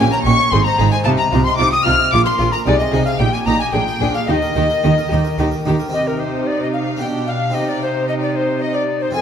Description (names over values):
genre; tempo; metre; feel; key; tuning
classical, baroque-style concerto movement with solo episodes; 112 BPM; 3/4; straight; Eb major, C minor from 5.9 s; A4 = 438 Hz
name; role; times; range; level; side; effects
alto recorder; melody; 0.0-9.2 s; Bb4 to F6; -20 LUFS; left 2 dB; none
warm symphonic violin section; melody; 0.0-9.2 s; G4 to F6; -23 LUFS; left 5 dB; none
warm chamber violin section; second line; 0.0-9.2 s; F4 to Ab5; -26 LUFS; left 2 dB; none
harpsichord; accompaniment; 0.0-9.2 s; F2 to Eb5; -25 LUFS; right 1 dB; none
warm chamber viola section; accompaniment; 0.0-9.2 s; C4 to F4; -25 LUFS; right 1 dB; none
rich chamber double bass section; bass; 0.0-5.8 s; Ab1 to Eb2; -21 LUFS; right 3 dB; none
warm studio cello section; bass; 0.0-9.2 s; F2 to Eb3; -21 LUFS; right 3 dB; none
room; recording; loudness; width
moderate concert hall reverb, RT60 2.0 s; dark, warm production; -14 LUFS; side -8 dB against mid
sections
0.0-5.9 A section; 5.9-9.2 B section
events
none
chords
0.0 Eb7/Bb; 0.5 Ab; 1.1 F5/C; 2.1 Bb5; 2.7 Ab/C; 3.2 Eb/Bb; 3.7 Bb7; 4.3 Eb; 5.9 Cm; 7.0 G/B; 7.5 Cm